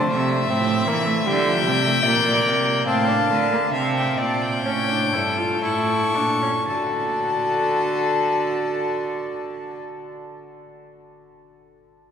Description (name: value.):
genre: classical, baroque-style fugue for string quartet.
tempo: 55-81 BPM.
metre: 4/4.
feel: straight.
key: unclear.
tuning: A4 = 440 Hz.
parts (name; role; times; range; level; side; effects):
rich violin; melody; 0.0-9.8 s; E5 to C#6; -24 LUFS; left 5 dB; none.
dark violin; second line; 0.0-9.8 s; A4 to F5; -25 LUFS; left 2 dB; none.
warm viola; accompaniment; 0.0-9.8 s; F3 to F#4; -25 LUFS; right 1 dB; none.
rich cello; bass; 0.1-9.8 s; G2 to E3; -25 LUFS; right 3 dB; none.
room: wet cathedral reverb, RT60 6.0 s.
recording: recorded in a church or concert hall.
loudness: -18 LUFS.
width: side -7 dB against mid.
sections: 0.0-6.7 A section; 6.7-11.0 B section.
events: slowing down 0.0-6.7.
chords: 0.0 Am/C; 1.3 Gm; 2.9 Dm/A; 4.6 A7; 6.7 D.